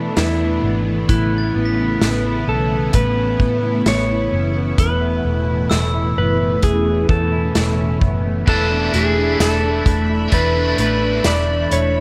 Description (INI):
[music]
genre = dream pop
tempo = 65 BPM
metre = 4/4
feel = straight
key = unclear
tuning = A4 = 438 Hz
[part]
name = clean lap steel guitar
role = melody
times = 0.0-12.0 s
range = E4 to D5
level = -24 LUFS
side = equal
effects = tape echo
[part]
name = string machine, violas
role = sustained chords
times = 0.0-12.0 s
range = A2 to B5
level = -26 LUFS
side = equal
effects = phaser, ensemble chorus
[part]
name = mellow electric guitar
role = arpeggios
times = 0.0-12.0 s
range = E2 to E4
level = -26 LUFS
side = equal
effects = subtle chorus, tape echo
[part]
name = vintage muted picked electric bass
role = bass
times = 0.0-12.0 s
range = E1 to E3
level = -23 LUFS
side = equal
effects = none
[part]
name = vintage drum kit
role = drums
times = 0.2-11.9 s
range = crash cymbal, hi-hat, kick drum, snare drum, tambourine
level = -21 LUFS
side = equal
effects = none
[part]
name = glockenspiel with hard plastic mallets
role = texture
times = 1.1-11.4 s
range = E6 to B6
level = -33 LUFS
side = equal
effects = tape echo
[part]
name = crunchy overdriven guitar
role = accompaniment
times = 8.5-12.0 s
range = E2 to E4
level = -26 LUFS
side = equal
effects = tremolo, lush chorus
[sound]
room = light reverb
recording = none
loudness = -17 LUFS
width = mono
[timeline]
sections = 0.0-8.5 A section; 8.5-12.0 B section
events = none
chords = 0.0 Esus4; 1.1 Aadd9; 4.8 Esus4; 8.5 E7sus4